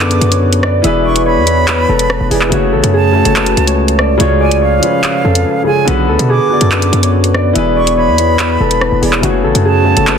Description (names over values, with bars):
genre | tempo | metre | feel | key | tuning
hip hop, drill | 143 BPM | 4/4 | half-time | F# minor | A4 = 440 Hz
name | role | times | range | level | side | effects
concert harp | melody | 0.0-10.2 s | F#4 to E5 | -15 LUFS | right 1 dB | low-pass filter
silver concert flute | second line | 0.0-10.2 s | E#5 to D6 | -19 LUFS | right 5 dB | digital delay
warm concert grand piano | accompaniment | 0.0-10.2 s | C#3 to D5 | -17 LUFS | left 4 dB | low-pass filter
glass harmonica | sustained chords | 0.0-10.2 s | A3 to C#5 | -20 LUFS | left 2 dB | stereo widening
hard-hitting 808-style bass | bass | 0.0-10.2 s | E1 to B2 | -14 LUFS | equal | none
drill drum kit | drums | 0.0-10.2 s | handclaps, hi-hat, rim click | -17 LUFS | equal | vintage 12-bit sampler grit
room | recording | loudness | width
light reverb, small room ambience | dense, heavily limited modern master | -9 LUFS | side -7 dB against mid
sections
0.0-10.2 A section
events
drums muted 5.5-5.9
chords
0.0 Bm; 0.8 E; 2.5 F#m; 4.2 C#; 5.9 Bm; 7.6 E; 9.2 F#m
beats
0.00 0.42 | 0.84 1.26 1.68 2.10 | 2.52 2.94 3.36 3.78 | 4.20 4.62 5.04 5.46 | 5.88 6.30 6.72 7.13 | 7.55 7.97 8.39 8.81 | 9.23 9.65 10.07